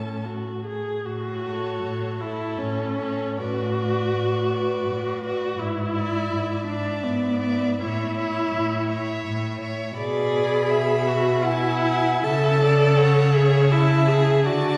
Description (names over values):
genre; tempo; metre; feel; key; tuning
classical, slow romantic movement for string quartet; 72-86 BPM; 3/4; rubato; A major; A4 = 441 Hz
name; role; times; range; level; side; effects
rich violin; melody; 0.0-14.8 s; C#5 to B5; -37 LUFS; equal; none
rich violin; second line; 0.0-14.8 s; A4 to F#5; -32 LUFS; equal; none
rich viola; accompaniment; 0.0-14.8 s; B3 to A4; -26 LUFS; equal; none
clear cello; bass; 0.0-14.8 s; G#2 to D3; -27 LUFS; equal; none
room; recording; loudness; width
wet concert hall reverb, RT60 1.9 s; heard from further back in the room; -23 LUFS; mono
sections
0.0-1.1 A section; 1.1-14.8 B section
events
none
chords
0.0 A; 3.4 Bm7/A; 5.6 E7/G#; 7.8 A; 10.0 E7/B; 12.2 A/C#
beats
0.27 | 1.07 1.83 2.60 | 3.40 4.16 4.89 | 5.60 6.32 7.04 | 7.81 8.54 9.26 | 9.99 10.71 11.45 | 12.23 12.98 13.71 | 14.45